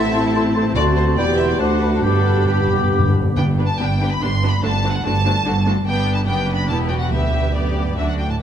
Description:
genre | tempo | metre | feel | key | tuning
quick classical-period movement for symphony orchestra | 135-148 BPM | 3/4 | rubato | G major | A4 = 439 Hz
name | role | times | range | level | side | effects
rich chamber violin section | melody | 0.0-8.4 s | D5 to C6 | -25 LUFS | left 2 dB | none
clear oboe | second line | 0.0-3.1 s | F#5 to A5 | -29 LUFS | right 1 dB | none
rich studio violin section | second line | 0.0-8.2 s | F#4 to E5 | -28 LUFS | left 3 dB | none
warm clarinet | second line | 0.0-3.1 s | D4 to F#4 | -29 LUFS | left 2 dB | none
mellow bassoon | accompaniment | 0.0-3.1 s | A3 to B3 | -28 LUFS | right 2 dB | none
rich studio viola section | accompaniment | 0.0-8.2 s | A3 to G4 | -25 LUFS | right 2 dB | none
mellow French horn section | sustained chords | 0.0-3.1 s | A3 to G4 | -25 LUFS | left 3 dB | none
clear chamber double bass section | bass | 0.0-8.2 s | E1 to D2 | -22 LUFS | right 2 dB | none
rich chamber cello section | bass | 0.0-8.4 s | D2 to A2 | -22 LUFS | right 1 dB | none
large flute ensemble | second line | 0.1-3.1 s | B5 to D6 | -26 LUFS | left 6 dB | none
timpani | percussion | 2.0-4.0, 7.1-7.7 s | G2 to D3 | -22 LUFS | left 2 dB | none
room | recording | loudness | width
moderate concert hall reverb, RT60 2.3 s | none | -16 LUFS | side -9 dB against mid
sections
0.0-3.4 A section; 3.4-8.4 B section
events
timpani fill 2.0-3.4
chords
0.0 Am; 0.8 D7; 1.2 Em; 1.6 D7; 2.0 G; 4.6 D7/G; 5.9 G; 6.7 Em; 7.1 G/D; 8.0 D

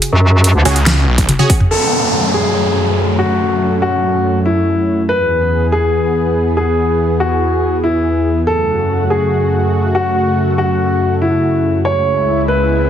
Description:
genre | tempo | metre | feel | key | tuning
heavy wobble dubstep | 142 BPM | 4/4 | half-time | F# minor | A4 = 440 Hz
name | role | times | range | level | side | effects
lush unison pad | sustained chords | 0.0-12.9 s | C#2 to G#4 | -16 LUFS | equal | chorus, sidechain pumping
big-room dance drum kit | drums | 0.0-1.8 s | crash cymbal, hi-hat, snare drum, toms | -15 LUFS | equal | overdrive, low-pass filter on hats, small room ambience, low-pass filter on snare, low-pass filter on toms, low-pass filter on cymbals
metallic wobble bass | bass | 0.1-0.6 s | D2 to F#2 | -8 LUFS | equal | chorus, overdrive
supersaw stab | stabs | 0.7-1.5 s | C#4 to G#4 | -19 LUFS | right 3 dB | ping-pong delay
snarling distorted saw bass | bass | 0.7-1.3 s | B1 to C#2 | -13 LUFS | equal | distortion, overdrive
electronic kick drum | drums | 1.2-1.6 s | none | -15 LUFS | equal | overdrive, small room ambience
dark baby grand piano | melody | 1.7-12.9 s | E4 to C#5 | -16 LUFS | left 1 dB | ping-pong delay
downlifter and riser | sound effects | 1.7-5.1, 12.4-12.9 s | none | -20 LUFS | equal | none
room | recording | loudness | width
moderate digital room reverb, RT60 1.2 s | heavily compressed radio sound, multiband compression | -12 LUFS | side -9 dB against mid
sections
0.0-1.7 A section; 1.7-12.9 B section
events
drop 0.0-1.7; drum fill 1.3-1.7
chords
0.0 C#sus4; 1.7 F#m; 5.1 E; 8.5 F#m; 11.8 C#m

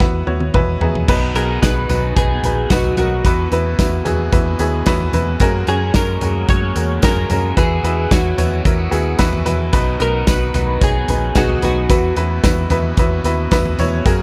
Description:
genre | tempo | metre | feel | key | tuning
piano-driven pop | 111 BPM | 4/4 | straight | B major | A4 = 440 Hz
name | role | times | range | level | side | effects
clean electric guitar | melody | 0.0-12.1 s | F#4 to C#5 | -24 LUFS | equal | analog chorus
bright upright piano | accompaniment | 0.0-14.2 s | B2 to A#5 | -22 LUFS | equal | none
vintage muted fingered electric bass | bass | 0.0-14.2 s | A#1 to F#2 | -22 LUFS | equal | none
natural country drum kit | drums | 0.0-14.2 s | crash cymbal, hi-hat, kick drum, snare drum, toms | -20 LUFS | equal | none
crunchy overdriven guitar | riff | 1.1-14.2 s | F#2 to F#4 | -30 LUFS | equal | phaser
tambourine | percussion | 1.1-14.2 s | none | -39 LUFS | equal | none
room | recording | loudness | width
small room ambience | none | -16 LUFS | mono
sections
0.0-1.1 A section; 1.1-14.2 B section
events
upright piano fill 0.0-1.1; drum fill 0.0-1.1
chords
0.0 Esus2; 1.1 B; 3.2 Esus2; 5.4 F#add9; 7.6 Esus2; 9.7 B; 11.9 Esus2

